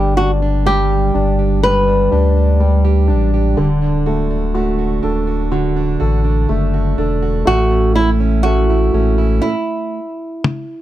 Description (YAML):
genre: pop ballad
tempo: 62 BPM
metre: 4/4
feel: straight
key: D major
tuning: A4 = 440 Hz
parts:
  - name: flamenco guitar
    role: melody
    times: 0.0-10.8 s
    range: E4 to B4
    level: -18 LUFS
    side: equal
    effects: none
  - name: warm grand piano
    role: accompaniment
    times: 0.0-9.5 s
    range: D3 to A4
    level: -21 LUFS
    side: left 3 dB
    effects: none
  - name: fingerpicked plugged-in steel-string acoustic guitar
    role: arpeggios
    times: 0.0-10.0 s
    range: G2 to G4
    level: -20 LUFS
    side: right 9 dB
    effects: none
  - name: warm sub bass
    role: bass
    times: 0.0-9.4 s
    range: D1 to D2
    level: -16 LUFS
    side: equal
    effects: none
  - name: electronic toms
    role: drums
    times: 10.4-10.7 s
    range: none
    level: -18 LUFS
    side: left 3 dB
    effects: none
room: small room ambience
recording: dry, close 1970s-style studio recording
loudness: -13 LUFS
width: side -13 dB against mid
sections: 0.0-10.8 A section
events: stop 9.4-10.8; drum fill 10.4-10.8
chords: 0.0 G; 3.6 D; 7.5 A